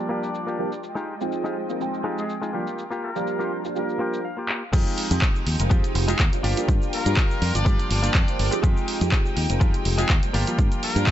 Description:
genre	filtered disco house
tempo	123 BPM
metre	4/4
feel	swing 54% on 16ths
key	F dorian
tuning	A4 = 445 Hz
part	brilliant horn section	melody	0.0-11.1 s	Ab3 to D5	-32 LUFS	left 1 dB	vintage 12-bit sampler grit, sidechain pumping, low-pass filter, digital delay
part	warm baby grand piano	accompaniment	0.0-11.1 s	F3 to G5	-28 LUFS	right 2 dB	phaser, sidechain pumping, low-pass filter
part	clear symphonic string section	sustained chords	0.0-11.1 s	Ab3 to G5	-35 LUFS	left 1 dB	sidechain pumping, low-pass filter
part	direct-recorded clean electric guitar	riff	0.1-11.1 s	Ab3 to G5	-31 LUFS	left 2 dB	sidechain pumping, low-pass filter
part	punchy analog drum machine	drums	0.2-11.1 s	crash cymbal, handclaps, hi-hat, shaker	-28 LUFS	equal	low-pass filter on perc, low-pass filter on snare, low-pass filter on cymbals, low-pass filter on hats
part	fingered electric bass	bass	4.7-11.0 s	F1 to G2	-24 LUFS	equal	sidechain pumping, low-pass filter
part	electronic kick drum	drums	4.7-11.1 s	none	-21 LUFS	equal	none
room	digital ambience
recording	nothing above 7.9 kHz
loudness	-21 LUFS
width	side -12 dB against mid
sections	0.0-4.7 A section; 4.7-11.1 B section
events	clean electric guitar fill 3.8-4.7; break 4.2-4.7; drum fill 4.5; drop 4.7-11.1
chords	0.0 Gm7; 0.8 Fm9; 2.5 Gm7; 4.7 Fm9; 6.4 Gm7; 8.6 Fm9; 10.3 Gm7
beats	0.34 | 0.83 1.32 1.81 2.29 | 2.78 3.27 3.76 4.25 | 4.73 5.22 5.71 6.20 | 6.68 7.17 7.66 8.15 | 8.64 9.12 9.61 10.10 | 10.59 11.08

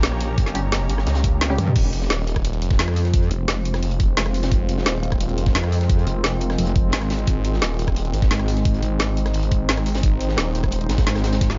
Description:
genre	dark technical drum and bass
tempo	174 BPM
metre	4/4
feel	straight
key	F minor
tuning	A4 = 440 Hz
part	deep dark ambient pad	sustained chords	0.0-11.6 s	Ab3 to Eb5	-31 LUFS	equal	chorus, built-in reverb, sidechain pumping
part	snarling distorted saw bass	bass	0.0-11.1 s	Eb1 to Db2	-25 LUFS	equal	distortion, tube saturation
part	crunchy breakbeat drum kit	drums	0.0-11.5 s	hi-hat, snare drum	-36 LUFS	equal	none
part	drum and bass drum kit	drums	0.0-11.6 s	crash cymbal, hi-hat, rim click, snare drum, toms	-27 LUFS	equal	overdrive
part	rich studio string section	texture	0.0-1.8 s	G4 to Bb5	-39 LUFS	equal	none
part	electronic kick drum	drums	0.4-11.5 s	none	-22 LUFS	equal	none
part	filtered dub chord stab	stabs	0.6-1.7 s	G3 to G4	-32 LUFS	equal	phaser, subtle chorus, digital delay
part	metallic wobble bass	bass	1.6-3.3, 5.5-8.8, 11.1-11.6 s	F1 to G2	-23 LUFS	equal	chorus
room	little or no reverb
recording	nothing above 7.5 kHz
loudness	-21 LUFS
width	mono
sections	0.0-1.8 A section; 1.8-11.6 A section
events	drop 0.0-1.8, 1.8-11.6; drum fill 1.6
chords	0.0 Gdim; 1.8 Fm; 7.3 Ab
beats	0.03 | 0.38 0.72 1.07 1.41 | 1.76 2.10 2.45 2.79 | 3.14 3.48 3.83 4.17 | 4.52 4.86 5.21 5.55 | 5.89 6.24 6.58 6.93 | 7.27 7.62 7.96 8.31 | 8.65 9.00 9.34 9.69 | 10.03 10.38 10.72 11.07 | 11.41

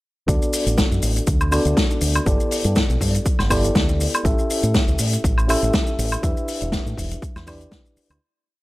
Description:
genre	nu-disco, nu disco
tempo	121 BPM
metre	4/4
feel	swing 55% on 16ths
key	D major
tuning	A4 = 441 Hz
part	mellow reed electric piano	accompaniment	0.3-8.2 s	B3 to E5	-25 LUFS	equal	fast tremolo, sidechain pumping, analog delay
part	fingered electric bass with an envelope filter	bass	0.3-8.2 s	E1 to A2	-22 LUFS	equal	none
part	electronic kick drum	drums	0.3-7.8 s	none	-22 LUFS	equal	overdrive
part	swinging big-band drum kit	drums	0.3-8.2 s	hi-hat, shaker, snare drum, woodblock	-23 LUFS	left 1 dB	none
room	studio ambience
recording	transformer saturation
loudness	-17 LUFS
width	side -18 dB against mid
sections	0.3-8.2 drop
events	drop 0.3-8.2; fade-out 5.6-8.2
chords	0.3 D6; 2.3 G69; 4.2 A7; 6.2 Em7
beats	| 0.28 0.78 1.27 1.77 | 2.26 2.76 3.26 3.75 | 4.25 4.74 5.24 5.74 | 6.23 6.73 7.22 7.72

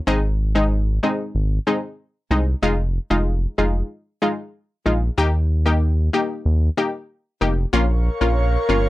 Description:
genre	dancehall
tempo	94 BPM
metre	4/4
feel	straight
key	Bb dorian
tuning	A4 = 440 Hz
part	analog pluck	accompaniment	0.1-8.9 s	Ab3 to G4	-21 LUFS	left 2 dB	chorus
part	round analog bass	bass	0.1-8.9 s	F1 to Eb2	-19 LUFS	equal	none
part	airy breathy pad	sustained chords	7.7-8.9 s	Bb4 to Db6	-23 LUFS	equal	chorus
room	little or no reverb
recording	dry, gritty hardware recording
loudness	-18 LUFS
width	side -17 dB against mid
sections	0.0-7.7 A section; 7.7-8.9 B section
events	none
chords	0.1 Ab; 2.6 Fm7; 5.2 Eb; 7.7 Bbm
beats	| 0.07 0.71 1.35 1.99 | 2.63 3.27 3.90 4.54 | 5.18 5.82 6.46 7.09 | 7.73 8.37

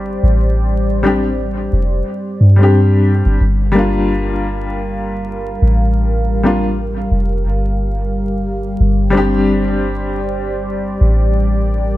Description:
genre	trip hop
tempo	89 BPM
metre	4/4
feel	swing 57% on 16ths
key	unclear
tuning	A4 = 440 Hz
part	warm upright piano	accompaniment	0.0-11.8 s	G3 to G4	-18 LUFS	left 2 dB	tremolo, tape echo
part	dark analog pad	sustained chords	0.0-12.0 s	G3 to F5	-21 LUFS	equal	chorus, vintage 12-bit sampler grit
part	soft 808-style bass	bass	0.0-12.0 s	F1 to G2	-15 LUFS	equal	none
room	light reverb, studio reverb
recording	dark, warm production, vinyl crackle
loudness	-13 LUFS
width	side -16 dB against mid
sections	0.0-12.0 A section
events	none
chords	0.0 Csus2/G; 3.4 Gm7; 8.8 Csus2/G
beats	0.03 | 0.70 1.38 2.05 2.73 | 3.40 4.08 4.75 5.42 | 6.10 6.77 7.45 8.12 | 8.79 9.47 10.14 10.82 | 11.49

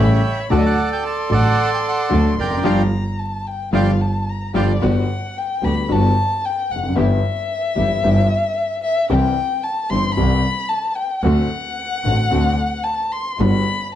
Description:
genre	tango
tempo	112 BPM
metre	4/4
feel	rubato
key	G minor, G major from 4.8 s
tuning	A4 = 440 Hz
part	bandoneon	melody	0.0-4.7 s	A4 to A5	-21 LUFS	right 3 dB	none
part	dark violin	second line	0.0-13.9 s	D5 to C6	-22 LUFS	left 3 dB	none
part	warm baby grand piano	accompaniment	0.0-13.6 s	G1 to G4	-21 LUFS	left 3 dB	none
part	rich studio string section	stabs	0.0-13.6 s	G3 to G4	-28 LUFS	right 3 dB	none
part	clear double bass	bass	0.0-13.6 s	F1 to D2	-20 LUFS	right 1 dB	none
room	moderate large studio reverb, RT60 0.9 s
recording	dark, warm production, vinyl crackle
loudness	-16 LUFS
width	side -11 dB against mid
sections	0.0-4.8 A section; 4.8-14.0 B section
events	band accent 2.6-4.8; violin solo 4.8-14.0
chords	0.0 A7; 0.5 D; 2.6 Gm7; 4.8 Gmaj7; 7.0 Em/G; 9.1 C; 11.2 D7; 13.4 Gmaj7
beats	| 0.51 1.04 1.57 2.11 | 2.65 3.19 3.73 4.27 | 4.82 5.36 5.90 6.43 | 6.97 7.50 8.03 8.57 | 9.10 9.64 10.17 10.70 | 11.23 11.77 12.31 12.85 | 13.40 13.94

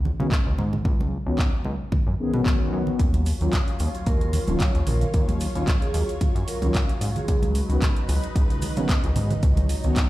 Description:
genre	nu-disco, nu disco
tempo	112 BPM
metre	4/4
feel	swing 55% on 16ths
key	unclear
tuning	A4 = 440 Hz
part	chorused synth bass	bass	0.0-9.9 s	Eb1 to Db3	-24 LUFS	equal	tube saturation
part	congas and maracas	percussion	0.1-10.1 s	none	-32 LUFS	right 2 dB	none
part	mellow synth brass	accompaniment	0.2-10.0 s	Eb3 to Ab4	-28 LUFS	left 1 dB	chorus, sidechain pumping, ping-pong delay
part	electronic kick drum	drums	0.3-10.1 s	none	-22 LUFS	equal	studio ambience
part	pop drum kit	drums	0.3-10.1 s	handclaps, hi-hat	-33 LUFS	equal	studio ambience
part	lush unison pad	sustained chords	3.3-10.1 s	Gb3 to Db5	-34 LUFS	left 1 dB	chorus, phaser, sidechain pumping
part	vibraphone with medium hard mallets	melody	4.1-7.4 s	Ab4 to Db5	-33 LUFS	right 2 dB	ping-pong delay
room	little or no reverb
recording	played on a big sound system in a bare room, large studio reverb, faint mains hum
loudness	-20 LUFS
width	side -16 dB against mid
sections	0.0-10.1 A section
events	none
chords	0.0 Db9sus4; 3.0 Ebm9; 7.3 Db9sus4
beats	0.32 | 0.85 1.39 1.93 2.46 | 3.00 3.53 4.07 4.61 | 5.14 5.68 6.21 6.75 | 7.28 7.82 8.36 8.89 | 9.43 9.96

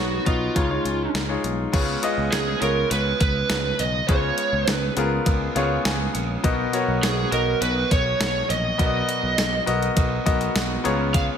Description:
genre	1980s-style pop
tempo	102 BPM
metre	4/4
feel	straight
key	unclear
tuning	A4 = 440 Hz
part	lead guitar through a small cranked amp	melody	0.0-11.2 s	E#4 to E#5	-24 LUFS	right 3 dB	overdrive
part	clear concert grand piano	accompaniment	0.0-11.4 s	B2 to A#5	-25 LUFS	left 4 dB	none
part	overdriven picked electric bass	bass	0.0-11.3 s	A#1 to C#2	-27 LUFS	equal	none
part	clean 12-bit digital drum machine	drums	0.3-11.3 s	crash cymbal, hi-hat, kick drum, snare drum, tambourine	-25 LUFS	equal	overdrive, gated reverb
part	overdriven semi-hollow guitar	accompaniment	1.7-11.4 s	B2 to C#4	-33 LUFS	right 8 dB	ensemble chorus
room	light reverb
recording	none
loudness	-20 LUFS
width	side -8 dB against mid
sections	0.0-1.7 A section; 1.7-11.4 B section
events	grand piano fill 5.3-6.4, 10.0-11.1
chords	0.0 B; 0.6 C#add9; 1.7 C#7; 6.4 Bmaj7; 10.9 C#7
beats	0.56 1.15 | 1.73 2.32 2.91 3.50 | 4.09 4.67 5.26 5.85 | 6.44 7.03 7.62 8.21 | 8.79 9.38 9.97 10.56 | 11.15

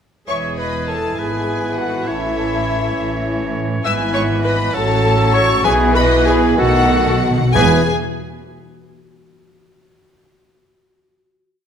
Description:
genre	quick classical-period movement for symphony orchestra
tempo	61-68 BPM (dotted quarters)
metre	6/8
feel	straight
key	E major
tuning	A4 = 441 Hz
part	rich studio violin section	melody	0.3-7.9 s	E5 to E6	-23 LUFS	left 4 dB	none
part	bright clarinet	second line	0.3-7.8 s	E4 to E5	-24 LUFS	left 1 dB	none
part	bright oboe	second line	0.3-7.8 s	G#4 to C#5	-26 LUFS	right 1 dB	none
part	mellow hollow concert flute	second line	0.3-7.9 s	B4 to E6	-24 LUFS	left 2 dB	none
part	rich studio violin section	second line	0.3-7.9 s	G#4 to G#5	-28 LUFS	left 4 dB	none
part	rich studio viola section	accompaniment	0.3-7.9 s	E4 to E5	-24 LUFS	left 1 dB	none
part	warm bassoon	accompaniment	0.3-7.8 s	D#3 to F#3	-25 LUFS	right 2 dB	none
part	warm French horn section	sustained chords	0.3-7.8 s	G#3 to F#4	-24 LUFS	left 4 dB	none
part	clear studio double bass section	bass	0.3-7.9 s	E1 to B1	-23 LUFS	right 3 dB	none
part	warm studio cello section	bass	0.3-7.9 s	E2 to B2	-23 LUFS	right 3 dB	none
part	timpani	percussion	6.6-7.8 s	E2 to B2	-22 LUFS	left 2 dB	none
room	moderate scoring stage reverb, RT60 1.6 s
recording	none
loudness	-14 LUFS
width	side -8 dB against mid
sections	0.3-7.5 A section; 7.5-9.4 final chord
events	slowing down 3.0-7.5; timpani fill 6.6-7.5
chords	0.3 E; 1.2 E/G#; 2.1 A; 3.8 E/G#; 4.7 F#m/A; 5.6 E5/B; 6.6 B7; 7.5 E5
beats	| 0.28 1.19 | 2.08 2.96 | 3.85 4.74 | 5.64 6.58 | 7.55

